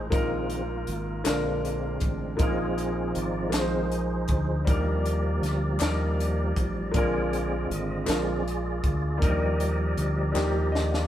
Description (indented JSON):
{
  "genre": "slow gospel",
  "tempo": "53 BPM (dotted quarters)",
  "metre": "6/8",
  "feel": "straight",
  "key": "Eb major",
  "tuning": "A4 = 440 Hz",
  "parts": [
    { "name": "warm grand piano", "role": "accompaniment", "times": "0.0-11.1 s", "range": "Bb2 to F5", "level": "-30 LUFS", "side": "left 1 dB", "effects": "none" },
    { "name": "percussive tonewheel organ", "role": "sustained chords", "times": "0.0-11.1 s", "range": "D3 to Eb5", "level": "-30 LUFS", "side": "right 2 dB", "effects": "slow rotary speaker, overdrive, chorus vibrato" },
    { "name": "fingered electric bass", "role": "bass", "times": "0.0-11.1 s", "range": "Ab1 to Eb2", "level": "-29 LUFS", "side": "equal", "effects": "none" },
    { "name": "crisp fusion drum kit", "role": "drums", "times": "0.1-11.1 s", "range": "hi-hat, kick drum, snare drum", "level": "-28 LUFS", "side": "equal", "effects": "none" },
    { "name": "group handclap", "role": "percussion", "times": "1.3-10.7 s", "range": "none", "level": "-39 LUFS", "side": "left 3 dB", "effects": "none" }
  ],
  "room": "light reverb",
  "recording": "band playing live in one room",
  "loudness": "-24 LUFS",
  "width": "side -11 dB against mid",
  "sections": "0.0-11.1 A section",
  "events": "tonewheel organ solo 0.0-11.1; drum fill 10.3-11.1; grand piano fill 10.3-11.1",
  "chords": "0.1 Bb7sus4; 1.3 Bb7; 2.4 Bb7sus4; 4.7 Ebmaj7; 6.9 Bb7; 9.2 Ebmaj7"
}